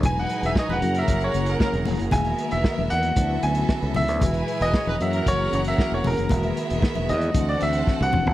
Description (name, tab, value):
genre	disco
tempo	115 BPM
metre	4/4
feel	straight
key	unclear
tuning	A4 = 440 Hz
part	rich studio violin section	second line	0.0-8.3 s	B3 to G#5	-31 LUFS	right 2 dB	none
part	mellow tine electric piano	accompaniment	0.0-8.3 s	A#2 to G#4	-29 LUFS	left 2 dB	medium stereo tremolo
part	warm studio string section	sustained chords	0.0-8.3 s	B2 to A#5	-34 LUFS	right 2 dB	none
part	fingered electric bass	bass	0.0-8.3 s	E1 to F#2	-25 LUFS	equal	none
part	warm soul drum kit	drums	0.0-8.3 s	hi-hat, kick drum, snare drum, toms	-24 LUFS	equal	none
part	congas	percussion	0.0-8.3 s	none	-32 LUFS	left 5 dB	none
part	clear baby grand piano	melody	0.1-8.3 s	A#4 to G#5	-26 LUFS	equal	none
part	warm horn section	stabs	0.4-6.0 s	A#3 to C#5	-32 LUFS	right 2 dB	none
room	little or no reverb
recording	dry, close 1970s-style studio recording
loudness	-20 LUFS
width	side -14 dB against mid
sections	0.0-8.3 A section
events	grand piano solo 0.0-8.3; drum fill 7.9-8.3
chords	0.0 Emaj9#11; 0.8 F#7; 2.1 Emaj9#11; 3.2 D69; 4.2 Emaj9#11; 5.0 F#7; 6.3 Emaj9#11; 7.3 D9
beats	| 0.04 0.56 1.08 1.60 | 2.13 2.65 3.17 3.69 | 4.21 4.74 5.26 5.78 | 6.30 6.83 7.35 7.87